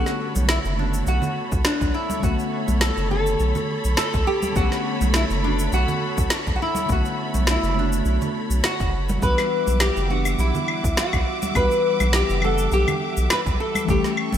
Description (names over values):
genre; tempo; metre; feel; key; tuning
sunset chillout; 103 BPM; 4/4; swing 55% on 16ths; B minor; A4 = 439 Hz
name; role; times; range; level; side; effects
nylon-string guitar; melody; 0.0-14.4 s; D4 to B4; -24 LUFS; left 1 dB; analog chorus, digital delay
mellow FM electric piano; accompaniment; 0.0-14.4 s; D3 to F#5; -29 LUFS; moving between left 7 dB and right 6 dB; chorus, phaser, auto-pan
rich studio string section; sustained chords; 0.0-14.4 s; G3 to D6; -31 LUFS; equal; none
round analog bass; bass; 0.0-14.4 s; F#1 to B1; -22 LUFS; equal; none
electronic snare drum, shaker and claves; drums; 0.1-14.4 s; none; -26 LUFS; left 1 dB; gated reverb
congas; percussion; 0.4-14.4 s; none; -32 LUFS; right 3 dB; none
electronic kick drum; drums; 1.5-14.0 s; none; -25 LUFS; equal; none
room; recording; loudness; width
moderate lush hall reverb, RT60 2.5 s; bright 1980s-style digital production; -19 LUFS; side -10 dB against mid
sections
0.0-14.4 A section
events
none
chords
0.0 Bm9; 9.2 Em9